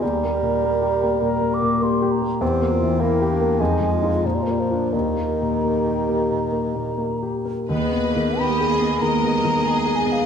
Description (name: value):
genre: classical, romantic movement for piano and orchestra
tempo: 82-103 BPM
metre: 4/4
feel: rubato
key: unclear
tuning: A4 = 439 Hz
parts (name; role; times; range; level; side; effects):
- warm grand piano; melody; 0.0-10.3 s; Eb2 to Ab4; -22 LUFS; left 2 dB; none
- mellow clarinet; second line; 0.0-7.3 s; D4 to Bb4; -30 LUFS; left 2 dB; none
- mellow hollow concert flute; second line; 0.0-10.3 s; Eb5 to D6; -27 LUFS; equal; none
- mellow bassoon; accompaniment; 0.0-7.4 s; Eb3 to C4; -24 LUFS; right 4 dB; none
- clear studio violin section; melody; 7.7-10.3 s; Cb5 to Eb5; -30 LUFS; left 1 dB; none
- rich studio violin section; second line; 7.7-10.3 s; G4 to Cb5; -28 LUFS; equal; none
- rich studio viola section; accompaniment; 7.7-10.3 s; G3 to Ab4; -28 LUFS; right 3 dB; none
- rich studio cello section; bass; 7.7-10.2 s; Eb2; -27 LUFS; right 7 dB; none
- timpani; percussion; 7.7-8.7 s; Eb3; -29 LUFS; right 3 dB; none
room: moderate scoring stage reverb, RT60 2.0 s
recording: faint mains hum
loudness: -18 LUFS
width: side -7 dB against mid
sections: 0.0-7.7 A section; 7.7-10.3 A section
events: none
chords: 0.0 Eb; 2.4 C7/E; 3.6 Fm7; 4.2 Bb; 4.9 Eb; 7.7 Abm/Eb